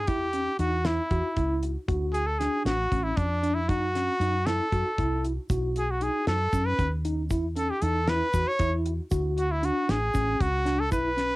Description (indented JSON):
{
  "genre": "progressive instrumental, band music in an uneven meter",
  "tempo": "232 BPM (eighths)",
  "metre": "7/8",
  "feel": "straight",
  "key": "unclear",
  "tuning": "A4 = 439 Hz",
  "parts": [
    { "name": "clear trumpet", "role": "melody", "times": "0.0-11.4 s", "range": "D4 to C#5", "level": "-27 LUFS", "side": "equal", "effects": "cassette tape" },
    { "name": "woody fretless electric bass", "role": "bass", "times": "0.0-11.3 s", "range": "A1 to F#2", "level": "-29 LUFS", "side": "equal", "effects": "none" },
    { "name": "mellow tine electric piano", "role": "arpeggios", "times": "0.1-11.3 s", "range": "C#4 to F#4", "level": "-31 LUFS", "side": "equal", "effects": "medium stereo tremolo, cassette tape, tape echo" },
    { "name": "damped 70s drum kit", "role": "drums", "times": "0.1-11.3 s", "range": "hi-hat, kick drum, snare drum", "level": "-30 LUFS", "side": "equal", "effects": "cassette tape" },
    { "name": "tube shaker", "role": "percussion", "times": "5.5-11.2 s", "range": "none", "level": "-48 LUFS", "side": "right 3 dB", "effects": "none" }
  ],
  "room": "light reverb",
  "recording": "home recording on cassette",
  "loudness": "-24 LUFS",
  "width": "side -19 dB against mid",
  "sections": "0.0-11.4 A section",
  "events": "none",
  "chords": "0.1 Em; 1.9 D; 3.7 F#m; 5.5 B; 7.3 E5; 9.1 D",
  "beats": "| 0.09 0.34 0.60 0.86 1.12 1.37 1.63 | 1.89 2.15 2.40 2.66 2.92 3.18 3.44 | 3.69 3.95 4.21 4.47 4.72 4.98 5.24 | 5.50 5.76 6.01 6.27 6.53 6.79 7.05 | 7.31 7.57 7.82 8.08 8.34 8.60 8.86 | 9.12 9.37 9.63 9.89 10.15 10.41 10.66 | 10.92 11.18"
}